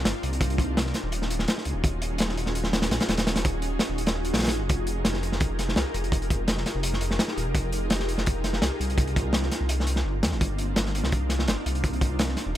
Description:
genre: drum and bass, jungle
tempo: 168 BPM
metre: 4/4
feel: straight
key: unclear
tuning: A4 = 440 Hz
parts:
  - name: ethereal airy pad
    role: sustained chords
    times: 0.0-12.5 s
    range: Bb3 to Bb4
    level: -32 LUFS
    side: equal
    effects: ensemble chorus, built-in reverb, vintage 12-bit sampler grit
  - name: dark detuned saw bass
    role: bass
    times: 0.0-12.6 s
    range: Eb1 to F2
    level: -28 LUFS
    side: equal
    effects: none
  - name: crunchy breakbeat drum kit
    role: drums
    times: 0.1-12.5 s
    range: hi-hat, kick drum, snare drum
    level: -26 LUFS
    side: equal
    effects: none
room: studio reverb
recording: none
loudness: -23 LUFS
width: side -12 dB against mid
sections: 0.0-12.6 A section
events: none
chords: 0.0 Cm11; 1.1 Ebm11; 4.7 Fm11; 9.0 Cm11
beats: 0.05 | 0.41 0.77 1.12 1.48 | 1.84 2.19 2.55 2.91 | 3.27 3.62 3.98 4.34 | 4.69 5.05 5.41 5.76 | 6.12 6.48 6.84 7.19 | 7.55 7.91 8.27 8.62 | 8.98 9.34 9.69 10.05 | 10.41 10.77 11.12 11.48 | 11.84 12.19 12.55

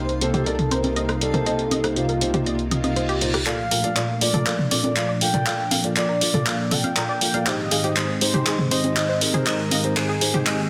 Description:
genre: progressive house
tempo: 120 BPM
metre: 4/4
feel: straight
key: Bb major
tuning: A4 = 439 Hz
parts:
  - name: expressive synth lead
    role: melody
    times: 0.0-10.6 s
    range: F4 to G5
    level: -30 LUFS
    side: equal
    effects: lush chorus, tape echo
  - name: warm analog pad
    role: sustained chords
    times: 0.0-10.7 s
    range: C2 to Eb4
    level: -29 LUFS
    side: equal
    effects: chorus
  - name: felt-muted upright piano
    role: stabs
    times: 0.0-10.5 s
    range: Ab2 to G5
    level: -30 LUFS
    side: equal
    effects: low-pass filter, tape echo
  - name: backwards swelling texture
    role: texture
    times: 0.0-3.5 s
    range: F4 to F5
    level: -43 LUFS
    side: equal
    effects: none
  - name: deep house drum kit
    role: drums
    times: 0.1-10.6 s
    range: handclaps, hi-hat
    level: -26 LUFS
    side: equal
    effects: overdrive, high-pass filter on hats, low-pass filter on hats, high-pass filter on snare, low-pass filter on snare, high-pass filter on room, low-pass filter on room
  - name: unison pluck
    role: arpeggios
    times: 0.3-10.6 s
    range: G4 to F5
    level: -33 LUFS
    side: equal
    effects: tape echo
  - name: punchy analog drum machine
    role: percussion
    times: 0.3-10.4 s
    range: congas, rim click, toms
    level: -27 LUFS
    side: equal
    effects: overdrive
  - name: reverse cymbal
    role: sound effects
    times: 2.8-3.5 s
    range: none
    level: -34 LUFS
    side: equal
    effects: none
room: light reverb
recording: dense, heavily limited modern master, high-pass filter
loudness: -22 LUFS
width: mono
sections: 0.0-3.5 A section; 3.5-10.7 B section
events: reverse cymbal 2.8-3.5; build-up 3.5-10.7; drum fill 3.5-10.7; filter sweep on felt piano 3.5-10.7; filter sweep on analog synth pad 3.5-10.7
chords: 0.0 Cm7; 3.5 Bbmaj7; 7.5 Abmaj7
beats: 0.47 0.96 | 1.47 1.97 2.46 2.96 | 3.46 3.96 4.46 4.96 | 5.46 5.96 6.46 6.96 | 7.46 7.96 8.46 8.96 | 9.46 9.96 10.46

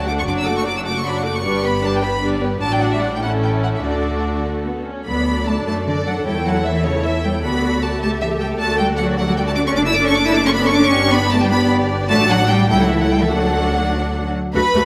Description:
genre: quick classical-period movement for string orchestra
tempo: 96-104 BPM (dotted quarters)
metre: 6/8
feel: rubato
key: D major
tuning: A4 = 438 Hz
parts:
  - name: rich symphonic violin section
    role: melody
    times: 0.0-14.8 s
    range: C#5 to E6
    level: -24 LUFS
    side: equal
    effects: none
  - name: warm studio violin section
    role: second line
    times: 0.0-14.8 s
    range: E4 to F#5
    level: -26 LUFS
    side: equal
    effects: none
  - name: rich symphonic viola section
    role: accompaniment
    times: 0.0-14.8 s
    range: F#3 to G4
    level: -25 LUFS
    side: equal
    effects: none
  - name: rich symphonic cello section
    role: bass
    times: 0.0-14.8 s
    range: D2 to E4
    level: -24 LUFS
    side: equal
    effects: none
  - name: rich symphonic double bass section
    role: bass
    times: 0.0-14.8 s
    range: F#1 to F#2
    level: -26 LUFS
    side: equal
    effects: none
room: moderate scoring stage reverb, RT60 1.9 s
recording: none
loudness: -18 LUFS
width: mono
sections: 0.0-5.1 A section; 5.1-14.5 B section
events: none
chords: 0.3 D/F#; 1.4 G; 2.6 D/A; 3.2 A; 3.8 D; 5.7 D/F#; 6.3 A7/E; 7.4 D; 8.0 A7/C#; 8.6 D; 9.8 D/F#; 10.9 G; 12.1 D/A; 12.7 A7/C#; 13.3 D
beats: | 0.26 0.84 | 1.44 2.02 | 2.62 3.22 | 3.84 4.46 | 5.07 5.67 | 6.26 6.85 | 7.44 8.02 | 8.60 9.18 | 9.76 10.35 | 10.93 11.51 | 12.10 12.70 | 13.31 13.93 | 14.55

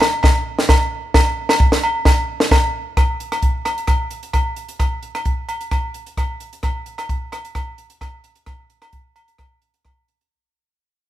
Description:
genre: highlife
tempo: 131 BPM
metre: 4/4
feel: straight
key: none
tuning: none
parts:
  - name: compact cocktail drum kit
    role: drums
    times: 0.0-10.3 s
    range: hi-hat, kick drum, rim click, snare drum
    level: -17 LUFS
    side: equal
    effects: none
  - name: agogo bells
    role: percussion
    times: 0.0-10.0 s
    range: none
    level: -22 LUFS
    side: equal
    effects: none
room: little or no reverb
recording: band playing live in one room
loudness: -17 LUFS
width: side -13 dB against mid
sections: 0.0-3.0 A section; 3.0-10.3 B section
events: fade-out 3.0-10.3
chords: none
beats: 0.23 0.69 | 1.14 1.60 2.05 2.51 | 2.97 3.42 3.88 4.34 | 4.80 5.25 5.71 6.17 | 6.63 7.09 7.55 8.01 | 8.47 8.93 9.39 9.85

